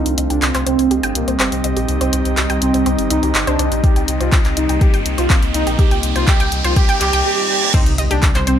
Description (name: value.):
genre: melodic techno.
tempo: 123 BPM.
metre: 4/4.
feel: straight.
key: C dorian.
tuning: A4 = 441 Hz.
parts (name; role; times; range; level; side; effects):
analog synth brass; melody; 0.0-8.6 s; Bb3 to G4; -20 LUFS; right 2 dB; chorus, tape echo.
deep dark ambient pad; sustained chords; 0.0-8.6 s; G3 to Eb4; -25 LUFS; left 1 dB; chorus, built-in reverb, sidechain pumping.
analog pluck; arpeggios; 0.0-8.5 s; C4 to G5; -25 LUFS; equal; chorus, sidechain pumping, tape echo.
dark detuned saw bass; bass; 0.0-8.6 s; G1 to C2; -21 LUFS; equal; sidechain pumping.
riser, reverse cymbal and impact; sound effects; 2.1-8.6 s; none; -23 LUFS; right 2 dB; none.
airy breathy pad; texture; 0.0-7.3 s; C4 to F5; -25 LUFS; right 1 dB; chorus, sidechain pumping.
deep house drum kit; drums; 0.1-8.6 s; crash cymbal, handclaps, hi-hat; -21 LUFS; left 1 dB; sidechain pumping on hats, high-pass filter on hats, high-pass filter on snare, sidechain pumping on cymbals, high-pass filter on cymbals, high-pass filter on room.
electronic kick drum; drums; 3.8-8.3 s; none; -14 LUFS; equal; none.
analog drone; drone; 8.1-8.6 s; C3 to G3; -27 LUFS; left 2 dB; chorus, sidechain pumping.
room: moderate digital room reverb, RT60 1.1 s, digital ambience.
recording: none.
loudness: -13 LUFS.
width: side -9 dB against mid.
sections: 0.0-7.7 A section.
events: build-up 0.0-7.7; filter sweep on synth arpeggio sound 0.0-7.7; filter sweep on analog polysynth 0.0-7.7; riser 2.1-7.7; reverse cymbal 6.8-7.7; impact 7.7-8.6.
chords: 0.0 Cm.